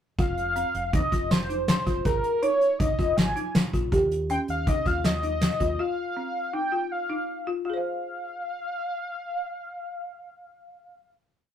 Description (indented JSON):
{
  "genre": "progressive instrumental, band music in an uneven meter",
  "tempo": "161 BPM",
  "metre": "5/4",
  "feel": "straight",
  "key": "F minor",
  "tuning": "A4 = 441 Hz",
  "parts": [
    { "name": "octave-doubled lead", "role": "melody", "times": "0.2-11.1 s", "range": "Bb4 to Ab5", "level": "-28 LUFS", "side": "equal", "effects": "chorus, phaser" },
    { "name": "folk marimba with medium hard mallets", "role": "arpeggios", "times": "0.2-11.2 s", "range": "C4 to F5", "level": "-30 LUFS", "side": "left 1 dB", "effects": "none" },
    { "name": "deep dub fingered electric bass", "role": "bass", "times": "0.2-5.8 s", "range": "F1 to Eb3", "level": "-33 LUFS", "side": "equal", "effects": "none" },
    { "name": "soft brush drum kit", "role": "drums", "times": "0.2-5.7 s", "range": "hi-hat, kick drum, snare drum", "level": "-25 LUFS", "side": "equal", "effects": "none" }
  ],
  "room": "moderate studio ambience, RT60 0.5 s",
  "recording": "rough rehearsal-room recording",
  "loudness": "-24 LUFS",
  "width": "side -9 dB against mid",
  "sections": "0.2-7.7 A section; 7.7-11.4 final chord",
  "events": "none",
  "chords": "0.2 F5; 2.1 Absus2; 3.9 N.C.; 5.8 Fsus2; 7.7 Fm",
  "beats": "| 0.19 0.56 0.94 1.31 1.68 | 2.06 2.43 2.80 3.18 3.55 | 3.93 4.30 4.67 5.05 5.42 | 5.79 6.17 6.54 6.91 7.28 | 7.66 8.03 8.40 8.77 9.14 | 9.51 9.88 10.25 10.62 10.99"
}